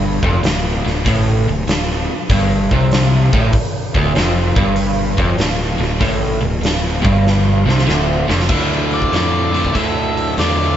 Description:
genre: blues rock power trio and southern rock.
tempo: 97 BPM.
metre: 4/4.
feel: swing 67% on 8ths.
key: D minor.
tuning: A4 = 440 Hz.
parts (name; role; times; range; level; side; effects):
crunchy overdriven guitar; riff; 0.0-10.8 s; D2 to D3; -17 LUFS; equal; none.
fuzz fingered electric bass; bass; 0.0-10.8 s; D1 to F2; -19 LUFS; equal; overdrive.
huge arena drum kit; drums; 0.2-10.6 s; crash cymbal, hi-hat, kick drum, snare drum; -18 LUFS; equal; none.
octave-fuzz lead guitar; melody; 8.9-10.8 s; D5 to E5; -21 LUFS; left 2 dB; distortion.
biting lead guitar; second line; 9.0-10.8 s; F4 to A4; -28 LUFS; right 6 dB; none.
room: wet studio reverb, RT60 0.5 s.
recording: band playing live in one room, nothing above 7.7 kHz.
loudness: -13 LUFS.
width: side -10 dB against mid.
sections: 0.0-8.5 A section; 8.5-10.8 B section.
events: drum fill 7.3-8.5.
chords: 0.0 Dm.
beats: 0.43 | 1.05 1.67 2.29 2.91 | 3.53 4.15 4.77 5.39 | 6.01 6.63 7.26 7.88 | 8.50 9.12 9.74 10.37.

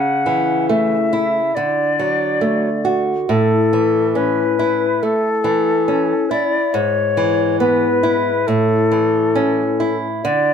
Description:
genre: romantic duo for flute and classical guitar.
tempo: 69 BPM.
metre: 4/4.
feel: rubato.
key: unclear.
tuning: A4 = 440 Hz.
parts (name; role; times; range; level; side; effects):
concert flute; melody; 0.0-10.5 s; A4 to F#5; -18 LUFS; left 3 dB; plate reverb.
nylon-string guitar; accompaniment; 0.0-10.5 s; G#2 to F#4; -17 LUFS; equal; none.
room: moderate small room reverb, RT60 0.5 s.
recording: none.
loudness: -15 LUFS.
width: side -7 dB against mid.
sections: 0.0-10.5 A section.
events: none.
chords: 0.0 A/C#; 1.6 D; 3.3 A; 6.7 E/G#; 8.5 A.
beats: 0.70 1.56 2.42 | 3.30 4.17 5.03 5.88 | 6.73 7.60 8.47 9.35 | 10.24.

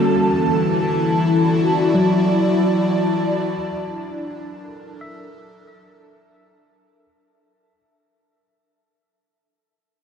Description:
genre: ambient.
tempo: 70 BPM.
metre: 4/4.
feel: straight.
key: unclear.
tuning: A4 = 441 Hz.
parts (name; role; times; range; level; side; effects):
airy breathy pad; sustained chords; 0.0-7.1 s; D3 to A5; -18 LUFS; left 1 dB; chorus, shimmer reverb.
overdriven tine electric piano; arpeggios; 0.0-7.8 s; F#3 to E5; -22 LUFS; equal; phaser, tape echo, shimmer reverb.
room: wet huge ambient reverb, RT60 7.4 s.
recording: cassette tape.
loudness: -16 LUFS.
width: side -7 dB against mid.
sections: 0.0-7.0 A section.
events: fade-out 0.0-7.0.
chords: 0.1 E9sus4; 3.6 A#maj7#11.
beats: | 0.13 0.98 1.84 2.69 | 3.55 4.41 5.28 6.16.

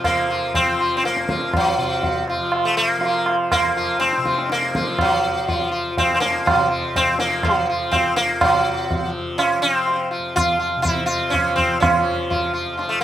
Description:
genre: indian classical, Hindustani.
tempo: 122 BPM.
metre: 7/4.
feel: straight.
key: unclear.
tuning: A4 = 438 Hz.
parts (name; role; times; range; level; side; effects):
sitar; melody; 0.0-13.0 s; Gb3 to F4; -20 LUFS; left 1 dB; slapback echo.
tanpura; drone; 0.0-13.0 s; F2 to F3; -27 LUFS; left 2 dB; none.
tabla; percussion; 0.0-13.0 s; none; -21 LUFS; right 2 dB; slapback echo.
room: little or no reverb.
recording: recorded outdoors, with no room sound.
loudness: -17 LUFS.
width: side -12 dB against mid.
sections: 0.0-8.4 A section; 8.4-13.0 B section.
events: speeding up 0.0-13.0.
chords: none.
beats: 0.04 0.53 1.03 | 1.53 2.02 2.52 3.01 3.51 4.00 4.49 | 4.99 5.48 5.97 6.46 6.95 7.44 7.93 | 8.41 8.90 9.39 9.88 10.36 10.85 11.33 | 11.81 12.30 12.78.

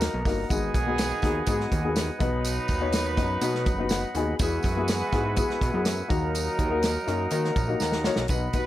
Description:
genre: uptempo 1960s-style soul.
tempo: 123 BPM.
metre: 4/4.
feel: straight.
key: unclear.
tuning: A4 = 440 Hz.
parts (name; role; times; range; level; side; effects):
warm horn section; second line; 0.0-8.7 s; D#3 to B4; -32 LUFS; right 3 dB; tape echo.
dark upright piano; accompaniment; 0.0-8.7 s; G#2 to G#5; -29 LUFS; left 4 dB; none.
percussive tonewheel organ; sustained chords; 0.0-8.7 s; A#4 to B5; -35 LUFS; right 1 dB; overdrive, wide subtle chorus.
fat analog bass; bass; 0.0-8.5 s; F#1 to D#3; -29 LUFS; right 1 dB; none.
warm soul drum kit; drums; 0.0-8.7 s; hi-hat, kick drum, snare drum; -28 LUFS; right 1 dB; none.
tambourine; percussion; 0.0-8.7 s; none; -38 LUFS; right 6 dB; none.
room: light reverb.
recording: none.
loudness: -23 LUFS.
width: side -14 dB against mid.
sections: 0.0-8.3 A section.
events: upright piano fill 3.7-4.4; drum fill 7.8-8.3.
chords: 0.0 D#m; 0.5 G#m7; 2.2 B; 4.4 Eadd9; 6.1 D#m.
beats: 0.02 | 0.50 0.99 1.48 1.97 | 2.45 2.94 3.42 3.91 | 4.40 4.89 5.37 5.86 | 6.35 6.83 7.32 7.81 | 8.30.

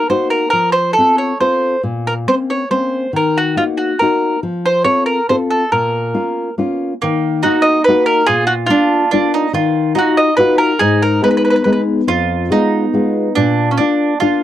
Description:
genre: italian folk, Italian serenade.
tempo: 141 BPM.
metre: 3/4.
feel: straight.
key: Bb harmonic minor, Eb harmonic minor from 7.0 s.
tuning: A4 = 440 Hz.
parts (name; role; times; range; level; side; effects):
mandolin; melody; 0.0-11.8 s; F4 to Eb5; -14 LUFS; right 1 dB; none.
nylon-string guitar; accompaniment; 0.1-14.4 s; F2 to A4; -16 LUFS; left 3 dB; none.
bowl-back mandolin; second line; 7.0-14.4 s; Bb3 to F4; -18 LUFS; right 6 dB; none.
room: light reverb.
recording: dry, close 1970s-style studio recording.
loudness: -12 LUFS.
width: side -12 dB against mid.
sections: 0.0-7.0 A section; 7.0-14.4 B section.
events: none.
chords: 0.0 Ebm; 0.5 F; 1.8 Bbmadd9; 3.1 Ebm; 4.4 F; 5.7 Bbm; 7.0 Ebm; 8.3 Bb; 9.5 Ebmadd9; 10.8 Abm; 12.1 Fdim; 13.4 Bb.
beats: 0.10 | 0.53 0.96 1.40 | 1.83 2.27 2.71 | 3.14 3.57 4.00 | 4.42 4.85 5.28 | 5.71 6.13 6.57 | 7.01 7.43 7.86 | 8.28 8.70 9.11 | 9.53 9.95 10.37 | 10.80 11.22 11.65 | 12.08 12.51 12.93 | 13.35 13.78 14.20.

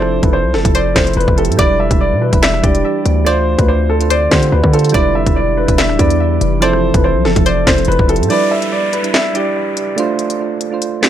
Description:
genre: hip hop, drill.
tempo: 143 BPM.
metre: 4/4.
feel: half-time.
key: E phrygian.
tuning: A4 = 440 Hz.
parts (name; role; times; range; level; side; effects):
warm concert grand piano; melody; 0.0-9.9 s; A4 to E5; -17 LUFS; left 1 dB; low-pass filter, analog delay.
string-like resonator pluck; second line; 0.0-7.9 s; C5 to E5; -24 LUFS; left 1 dB; chorus, analog delay.
soft electric-piano-like synth keys; accompaniment; 0.0-11.1 s; F3 to C5; -19 LUFS; right 6 dB; chorus, low-pass filter, analog delay.
glassy FM pad; sustained chords; 0.0-8.3 s; D3 to A4; -24 LUFS; equal; ensemble chorus, built-in reverb, phaser.
hard-hitting 808-style bass; bass; 0.0-8.3 s; D1 to D3; -16 LUFS; equal; none.
drill drum kit; drums; 0.0-11.1 s; handclaps, hi-hat, kick drum, rim click, snare drum; -15 LUFS; equal; vintage 12-bit sampler grit.
downlifter; sound effects; 8.3-11.1 s; none; -25 LUFS; equal; none.
room: digital ambience.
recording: echo-heavy mix.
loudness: -11 LUFS.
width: side -10 dB against mid.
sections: 0.0-8.3 A section; 8.3-11.1 B section.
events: break 8.3-11.1.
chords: 0.0 Fmaj7; 1.6 Em7; 3.3 Dm7; 4.9 Em7; 6.6 Fmaj7; 8.3 Em7; 10.0 Dm7.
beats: 0.33 0.75 1.17 | 1.59 2.01 2.43 2.85 | 3.27 3.69 4.10 4.52 | 4.94 5.36 5.78 6.20 | 6.62 7.04 7.46 7.88 | 8.30 8.72 9.14 9.56 | 9.98 10.40 10.82.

